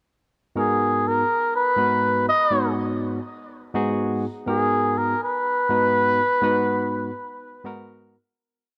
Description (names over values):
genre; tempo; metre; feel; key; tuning
jazz; 123 BPM; 4/4; straight; G# minor; A4 = 439 Hz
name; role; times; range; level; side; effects
trumpet with cup mute; melody; 0.6-7.9 s; G#4 to D#5; -23 LUFS; equal; none
barky tine electric piano; accompaniment; 0.6-8.2 s; G#2 to C#5; -27 LUFS; equal; none
room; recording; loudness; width
moderate plate reverb, RT60 3.2 s; none; -22 LUFS; mono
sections
0.6-8.4 groove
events
fade-out 6.4-8.4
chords
0.6 G#m9